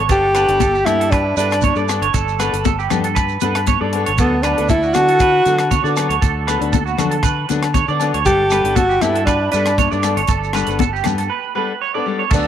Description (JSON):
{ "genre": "highlife guitar band", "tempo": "118 BPM", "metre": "4/4", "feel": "straight", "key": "unclear", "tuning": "A4 = 440 Hz", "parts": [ { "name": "clean electric guitar", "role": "arpeggios", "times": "0.0-12.5 s", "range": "F#4 to D5", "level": "-21 LUFS", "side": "right 10 dB", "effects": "lush chorus, tape echo" }, { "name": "fingered electric bass", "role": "bass", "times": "0.0-12.5 s", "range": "G1 to D3", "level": "-22 LUFS", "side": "equal", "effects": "none" }, { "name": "clear alto saxophone", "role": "melody", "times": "0.1-12.5 s", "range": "B3 to G4", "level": "-16 LUFS", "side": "equal", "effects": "tape echo" }, { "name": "picked steel-string acoustic guitar", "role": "accompaniment", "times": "0.1-12.5 s", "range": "F#3 to A4", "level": "-25 LUFS", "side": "left 8 dB", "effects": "none" }, { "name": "tight funk drum kit", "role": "drums", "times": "0.1-12.4 s", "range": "crash cymbal, hi-hat, kick drum, rim click", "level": "-21 LUFS", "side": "equal", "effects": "none" }, { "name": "congas", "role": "percussion", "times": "0.1-12.4 s", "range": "none", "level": "-24 LUFS", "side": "left 11 dB", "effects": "none" }, { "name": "shekere", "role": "percussion", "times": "0.1-12.4 s", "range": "none", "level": "-25 LUFS", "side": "right 6 dB", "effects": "none" }, { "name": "agogo bells", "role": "percussion", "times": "0.4-11.2 s", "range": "none", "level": "-27 LUFS", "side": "left 14 dB", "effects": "none" } ], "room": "light reverb", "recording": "1960s-style stereo with parts hard left and right", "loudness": "-14 LUFS", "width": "side -10 dB against mid", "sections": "0.0-12.3 A section", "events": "break 11.3-12.3", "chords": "0.1 Gadd9; 4.2 D6; 8.3 Gadd9" }